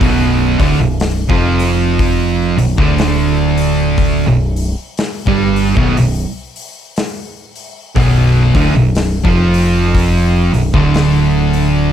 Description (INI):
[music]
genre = stoner and doom metal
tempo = 60 BPM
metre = 4/4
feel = swing 59% on 8ths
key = unclear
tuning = A4 = 440 Hz
[part]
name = distorted electric guitar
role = riff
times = 0.0-11.9 s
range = B1 to G3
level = -18 LUFS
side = equal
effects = overdrive
[part]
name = thick fuzz guitar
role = riff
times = 0.0-11.9 s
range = B1 to G3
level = -19 LUFS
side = left 7 dB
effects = distortion
[part]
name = thick fuzz guitar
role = riff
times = 0.0-11.9 s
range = B1 to G3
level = -15 LUFS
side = right 6 dB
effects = distortion
[part]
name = growling picked electric bass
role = bass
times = 0.0-11.9 s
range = B0 to G1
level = -18 LUFS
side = left 1 dB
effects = overdrive, tube saturation
[part]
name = big rock drum kit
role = drums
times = 0.0-11.7 s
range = hi-hat, kick drum, snare drum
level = -19 LUFS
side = left 1 dB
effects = none
[sound]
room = light reverb, studio reverb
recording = dark, warm production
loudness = -11 LUFS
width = side -9 dB against mid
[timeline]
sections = 0.0-11.9 A section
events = none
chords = 0.0 Bm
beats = | 0.01 1.00 2.00 2.99 | 3.98 4.98 5.97 6.96 | 7.96 8.95 9.95 10.94